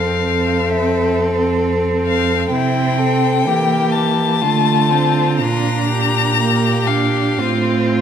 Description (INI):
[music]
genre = classical, slow romantic movement for string quartet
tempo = 59-66 BPM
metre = 3/4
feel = rubato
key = F major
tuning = A4 = 440 Hz
[part]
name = rich violin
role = melody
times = 0.0-7.9 s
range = E5 to Bb5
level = -19 LUFS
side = left 9 dB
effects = none
[part]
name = clear violin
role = second line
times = 0.0-8.0 s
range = E4 to A4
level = -20 LUFS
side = left 1 dB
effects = none
[part]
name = rich viola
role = accompaniment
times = 0.0-8.0 s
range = A3 to D4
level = -20 LUFS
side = right 3 dB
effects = none
[part]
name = rich cello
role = bass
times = 0.0-8.0 s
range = F2 to E3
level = -19 LUFS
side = right 4 dB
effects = none
[sound]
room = wet recital hall reverb, RT60 1.8 s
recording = none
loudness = -14 LUFS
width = side -8 dB against mid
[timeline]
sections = 0.0-8.0 A section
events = none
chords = 0.0 F; 2.5 C; 4.4 Dm7; 5.4 Bb